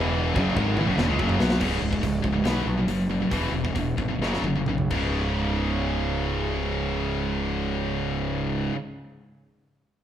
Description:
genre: heavy metal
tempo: 122-145 BPM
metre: 4/4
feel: straight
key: C# minor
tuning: A4 = 440 Hz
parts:
  - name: fuzz guitar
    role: riff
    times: 0.0-1.6 s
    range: E2 to B3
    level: -27 LUFS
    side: right 1 dB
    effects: distortion
  - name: high-gain distorted guitar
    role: riff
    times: 0.0-8.8 s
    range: C#2 to B3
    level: -29 LUFS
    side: left 7 dB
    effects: distortion
  - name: tight distorted guitar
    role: riff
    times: 0.0-8.8 s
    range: C#2 to B3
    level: -28 LUFS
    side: right 5 dB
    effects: distortion
  - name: fuzz fingered electric bass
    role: bass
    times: 0.0-8.7 s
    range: C#1 to C#2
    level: -28 LUFS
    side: equal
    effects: overdrive
  - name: tight metal drum kit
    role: drums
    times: 0.4-5.0 s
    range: china cymbal, crash cymbal, hi-hat, kick drum, snare drum, toms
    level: -30 LUFS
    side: equal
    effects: none
room: moderate large studio reverb, RT60 1.5 s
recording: band playing live in one room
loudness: -23 LUFS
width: side -10 dB against mid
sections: 0.0-1.6 A section; 1.6-5.1 B section; 5.1-9.1 C section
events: drum fill 0.8-1.6, 4.2-5.1; slowing down 1.6-5.1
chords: 0.3 F#5; 1.6 C#5; 2.4 B5; 3.3 E; 4.2 F#5; 4.9 C#5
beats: 0.35 0.76 1.18 | 1.60 2.01 2.44 2.86 | 3.30 3.74 4.20 4.67 | 5.15 5.64 6.13 6.62 | 7.12 7.61 8.10 8.59

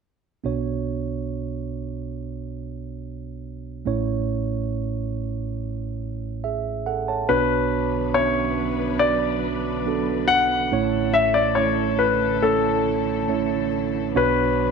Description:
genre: pop ballad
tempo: 70 BPM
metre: 4/4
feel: straight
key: unclear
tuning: A4 = 440 Hz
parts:
  - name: mellow tine electric piano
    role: accompaniment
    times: 0.4-14.7 s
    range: A1 to A5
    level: -24 LUFS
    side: right 6 dB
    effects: none
  - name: clear baby grand piano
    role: melody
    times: 7.3-14.7 s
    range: A4 to F#5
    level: -21 LUFS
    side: left 5 dB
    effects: none
  - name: muted studio string section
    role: sustained chords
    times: 7.3-14.7 s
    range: D3 to B4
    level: -31 LUFS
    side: left 10 dB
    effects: none
room: moderate echo chamber reverb, RT60 1.6 s, small room reverb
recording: 1960s-style stereo with parts hard left and right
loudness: -21 LUFS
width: side -5 dB against mid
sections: 0.4-7.3 A section; 7.3-14.7 B section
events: none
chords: 0.4 Bmadd9; 3.9 A; 7.3 Bmadd9; 10.7 A; 14.1 Bmadd9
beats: | 0.43 1.29 2.15 3.00 | 3.86 4.72 5.57 6.43 | 7.29 8.14 9.00 9.86 | 10.72 11.57 12.43 13.29 | 14.14

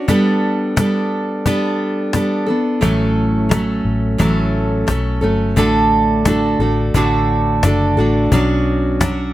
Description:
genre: acoustic pop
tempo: 87 BPM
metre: 4/4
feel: straight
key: D major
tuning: A4 = 441 Hz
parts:
  - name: picked steel-string acoustic guitar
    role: accompaniment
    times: 0.0-9.3 s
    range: A2 to A4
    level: -15 LUFS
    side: right 1 dB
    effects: none
  - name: cajon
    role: drums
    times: 0.1-9.2 s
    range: none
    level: -18 LUFS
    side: left 3 dB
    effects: none
  - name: vintage muted fingered electric bass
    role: bass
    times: 2.8-9.3 s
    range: F#1 to B1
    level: -20 LUFS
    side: left 1 dB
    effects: none
room: little or no reverb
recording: none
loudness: -14 LUFS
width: side -15 dB against mid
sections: 0.0-9.3 A section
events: none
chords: 0.1 Gadd9; 2.8 A6; 5.6 D/A; 8.3 Bmadd9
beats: | 0.08 0.77 1.45 2.14 | 2.82 3.51 4.20 4.88 | 5.57 6.26 6.94 7.63 | 8.32 9.01

